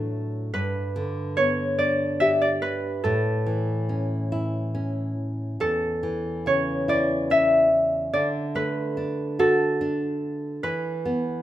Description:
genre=children's music, lullaby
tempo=48 BPM (dotted quarters)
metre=6/8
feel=rubato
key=unclear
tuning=A4 = 440 Hz
part: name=Celtic harp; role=melody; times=0.0-11.4 s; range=A4 to E5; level=-23 LUFS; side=equal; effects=none
part: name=nylon-string guitar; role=accompaniment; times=0.0-11.4 s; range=E2 to G4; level=-26 LUFS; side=equal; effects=none
room=moderate recital hall reverb, RT60 1.5 s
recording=minimal, uncompressed stereo recording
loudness=-22 LUFS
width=side -13 dB against mid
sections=0.0-11.4 A section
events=none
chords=0.0 Dadd9/A; 0.5 G; 3.0 A; 8.1 D; 10.6 E5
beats=| 0.54 1.79 | 3.05 4.32 | 5.60 6.88 | 8.13 9.39 | 10.63

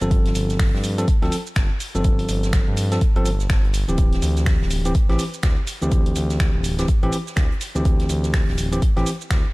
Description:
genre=deep house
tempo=124 BPM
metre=4/4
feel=swing 60% on 16ths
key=unclear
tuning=A4 = 443 Hz
part: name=bell-like tine electric piano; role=stabs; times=0.0-9.1 s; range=E3 to A4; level=-25 LUFS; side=equal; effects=sidechain pumping, digital delay
part: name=smooth synth bass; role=bass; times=0.0-9.4 s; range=D1 to G2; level=-23 LUFS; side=equal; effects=sidechain pumping
part: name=deep house drum kit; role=drums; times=0.0-9.4 s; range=finger snaps, hi-hat, shaker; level=-30 LUFS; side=right 1 dB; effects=none
part: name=electronic kick drum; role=drums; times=0.1-9.4 s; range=none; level=-19 LUFS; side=equal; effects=none
part: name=soft-mallet drum kit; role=drums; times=0.1-9.4 s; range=hi-hat, snare drum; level=-39 LUFS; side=right 2 dB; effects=high-pass filter on hats, high-pass filter on snare, high-pass filter on room
room=digital ambience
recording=dark, warm production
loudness=-18 LUFS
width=side -23 dB against mid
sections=0.0-9.5 A section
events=none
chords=0.0 G9sus4; 4.0 D9sus4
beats=| 0.11 0.59 1.08 1.56 | 2.05 2.53 3.01 3.50 | 3.98 4.47 4.95 5.43 | 5.92 6.40 6.88 7.37 | 7.85 8.34 8.82 9.30

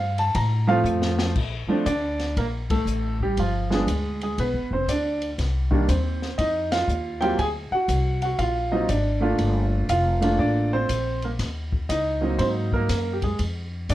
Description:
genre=jazz piano trio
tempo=120 BPM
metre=4/4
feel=swing 66% on 8ths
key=Bb major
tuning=A4 = 440 Hz
part: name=clear concert grand piano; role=melody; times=0.0-13.9 s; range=Eb3 to Bb5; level=-24 LUFS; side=right 1 dB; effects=none
part: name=upright bass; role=bass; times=0.0-13.9 s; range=F1 to A2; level=-25 LUFS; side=left 1 dB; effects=none
part: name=open jazz drum kit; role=drums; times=0.2-13.9 s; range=crash cymbal, hi-hat, kick drum, ride cymbal, snare drum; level=-32 LUFS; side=left 2 dB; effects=none
room=light reverb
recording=worn, warbling old tape, cassette tape, warbly pitch drift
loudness=-21 LUFS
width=side -14 dB against mid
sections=0.0-1.4 A section; 1.4-13.9 B section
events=grand piano solo 0.0-1.4; drum fill 0.9-1.4; band accent 2.6, 6.6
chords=0.0 Bbmaj7(no3); 1.4 Bbmaj7; 3.4 G7b9; 5.4 Cm; 7.4 D7alt; 9.4 Gm9; 11.4 Eb7(no3); 12.4 Ab7sus2; 13.4 N.C.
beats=0.35 0.85 | 1.36 1.86 2.36 2.87 | 3.37 3.87 4.37 4.88 | 5.38 5.88 6.38 6.88 | 7.38 7.88 8.38 8.88 | 9.39 9.89 10.39 10.89 | 11.39 11.89 12.39 12.89 | 13.39 13.90

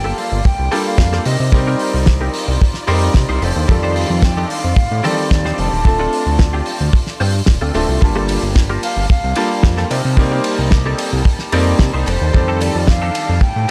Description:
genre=nu-disco, nu disco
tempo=111 BPM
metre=4/4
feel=straight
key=C dorian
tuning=A4 = 440 Hz
part: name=mellow silver concert flute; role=melody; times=0.0-13.7 s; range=C5 to A5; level=-26 LUFS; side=equal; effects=analog delay
part: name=bright concert grand piano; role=accompaniment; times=0.0-13.7 s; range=Eb3 to A5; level=-24 LUFS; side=equal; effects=sidechain pumping
part: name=muted studio violin section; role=sustained chords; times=0.0-13.7 s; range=G3 to A5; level=-33 LUFS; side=equal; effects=none
part: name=direct-recorded clean electric guitar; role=riff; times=0.0-13.4 s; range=Bb3 to C5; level=-27 LUFS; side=equal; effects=ensemble chorus
part: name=fat analog bass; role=bass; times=0.0-13.7 s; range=D1 to C3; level=-20 LUFS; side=equal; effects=sidechain pumping
part: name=damped 70s drum kit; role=drums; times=0.2-13.3 s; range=hi-hat, ride cymbal, snare drum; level=-27 LUFS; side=equal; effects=none
part: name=kick drum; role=drums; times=0.5-13.5 s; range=none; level=-15 LUFS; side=equal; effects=none
room=studio ambience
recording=dry, gritty hardware recording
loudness=-16 LUFS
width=mono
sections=0.0-13.7 A section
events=none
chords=0.0 Gm9; 1.3 Cm7; 3.4 F13; 5.9 Dm7; 8.0 Gm9; 9.9 Cm7; 12.1 F13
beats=0.45 0.99 | 1.53 2.07 2.61 3.15 | 3.69 4.23 4.77 5.31 | 5.85 6.39 6.93 7.47 | 8.01 8.55 9.10 9.64 | 10.18 10.72 11.26 11.80 | 12.34 12.88 13.42

